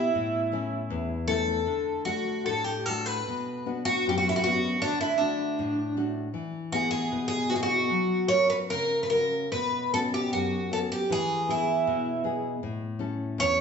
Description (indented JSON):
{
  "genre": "fado-style ballad",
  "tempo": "74-80 BPM",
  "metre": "2/4",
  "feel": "rubato",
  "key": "B minor",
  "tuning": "A4 = 440 Hz",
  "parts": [
    { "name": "picked twelve-string acoustic guitar", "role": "melody", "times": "0.0-13.6 s", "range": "D4 to C#5", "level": "-26 LUFS", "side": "right 1 dB", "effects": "none" },
    { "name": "nylon-string guitar", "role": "accompaniment", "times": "0.0-13.6 s", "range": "E2 to A#4", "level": "-30 LUFS", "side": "left 3 dB", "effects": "none" }
  ],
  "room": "wet large studio reverb, RT60 1.2 s",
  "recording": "band playing live in one room, nothing above 8.0 kHz",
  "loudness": "-25 LUFS",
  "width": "side -6 dB against mid",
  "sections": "0.0-13.6 A section",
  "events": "none",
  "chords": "0.1 A; 1.7 D; 3.3 Bm; 4.8 D; 6.3 E; 7.9 F#; 9.5 Bsus2; 11.1 E; 12.6 A",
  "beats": "| 0.15 0.90 | 1.67 2.46 | 3.27 4.06 | 4.83 5.59 | 6.34 7.12 | 7.91 8.72 | 9.53 10.33 | 11.11 11.87 | 12.62 13.38"
}